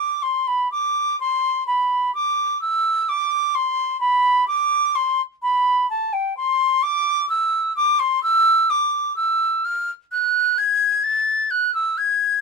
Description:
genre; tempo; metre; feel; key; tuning
classical, baroque-style fantasia for unaccompanied flute; 64 BPM; 4/4; rubato; unclear; A4 = 440 Hz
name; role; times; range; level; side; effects
silver concert flute; solo; 0.0-12.4 s; G5 to A6; -18 LUFS; right 1 dB; none
room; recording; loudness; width
little or no reverb; close, detailed microphones; -18 LUFS; side -4 dB against mid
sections
0.0-12.4 A section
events
none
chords
none

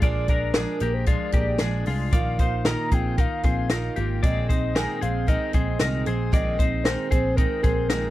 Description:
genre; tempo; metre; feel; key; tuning
jangly indie pop; 114 BPM; 4/4; straight; Bb mixolydian; A4 = 441 Hz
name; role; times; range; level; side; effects
warbly nostalgic lead; melody; 0.0-8.1 s; Bb4 to Bb5; -30 LUFS; equal; chorus
picked steel-string acoustic guitar; accompaniment; 0.0-8.1 s; Bb2 to Ab4; -31 LUFS; right 6 dB; none
twelve-string electric guitar; arpeggios; 0.0-8.1 s; Ab3 to D5; -30 LUFS; left 6 dB; none
vintage muted picked electric bass; bass; 0.0-8.1 s; Ab1 to C2; -27 LUFS; equal; none
compact cocktail drum kit; drums; 0.0-8.0 s; hi-hat, kick drum, snare drum; -23 LUFS; equal; none
room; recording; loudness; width
little or no reverb; dry, close 1970s-style studio recording; -21 LUFS; side -15 dB against mid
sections
0.0-8.1 A section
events
none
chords
0.0 Bb7; 4.2 Abadd9/Bb

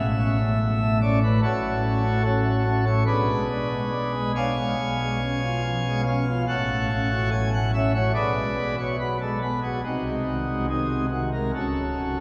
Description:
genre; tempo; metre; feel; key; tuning
classical, chorale-style piece for pipe organ; 71 BPM; 4/4; rubato; F# minor; A4 = 440 Hz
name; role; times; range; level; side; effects
pipe organ, principal chorus; solo; 0.0-12.2 s; C#1 to G#5; -24 LUFS; equal; none
room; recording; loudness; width
wet cathedral reverb, RT60 5.2 s; recorded in a church or concert hall; -24 LUFS; mono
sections
0.0-12.2 A section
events
none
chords
0.0 F#m/A; 3.1 G#dim/B; 4.8 C#7/B; 6.5 F#m/A; 8.2 Bm13; 9.8 G#7/B#; 11.5 F#m/C#

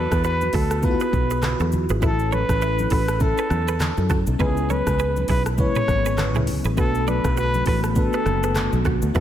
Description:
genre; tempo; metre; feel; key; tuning
afrobeats; 101 BPM; 4/4; swing 58% on 16ths; B dorian; A4 = 440 Hz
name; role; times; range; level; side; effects
breathy trumpet; melody; 0.0-9.2 s; G#4 to C#5; -25 LUFS; equal; diffuse ambient delay
FM electric piano with soft pad layer; accompaniment; 0.0-9.2 s; G#3 to B4; -27 LUFS; left 2 dB; chorus
direct-recorded clean electric guitar; riff; 0.0-9.2 s; E4 to D5; -32 LUFS; right 7 dB; none
fingered electric bass; bass; 0.0-9.2 s; F#1 to F#2; -23 LUFS; equal; none
afro-pop drum kit; drums; 0.1-9.2 s; handclaps, hi-hat, kick drum, rim click, shaker, toms; -25 LUFS; equal; none
congas; percussion; 0.4-9.2 s; none; -31 LUFS; left 1 dB; none
airy breathy pad; sustained chords; 6.8-9.2 s; D3 to B3; -30 LUFS; equal; chorus
room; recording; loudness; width
moderate plate reverb, RT60 1.9 s; dreamy mix soaked in reverb; -19 LUFS; side -11 dB against mid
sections
0.0-9.2 A section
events
none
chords
0.0 Esus2; 2.0 A; 4.4 C#m7; 6.8 Bm7

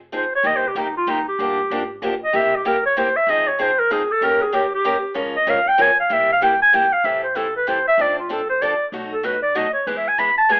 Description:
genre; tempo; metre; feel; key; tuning
acoustic string swing (jazz manouche); 191 BPM; 3/4; swing 60% on 8ths; A minor from 7.0 s; A4 = 440 Hz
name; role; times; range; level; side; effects
upright bass; bass; 0.0-10.6 s; F1 to F2; -43 LUFS; equal; none
picked steel-string acoustic guitar; accompaniment; 0.1-10.6 s; B2 to Bb4; -23 LUFS; equal; none
breathy clarinet; melody; 0.2-10.6 s; Eb4 to B5; -17 LUFS; equal; plate reverb
room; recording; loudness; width
moderate studio ambience, RT60 0.5 s; telephone sound; -16 LUFS; side -29 dB against mid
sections
0.0-7.0 A section; 7.0-10.6 A section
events
clarinet solo 0.0-10.6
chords
0.4 Cm7; 1.4 Gm7; 2.3 C7; 3.3 Fm7; 4.2 Eb7; 5.2 Bbm7/Db; 6.1 C7; 7.0 Am7; 8.0 F6; 8.9 B7; 9.9 E

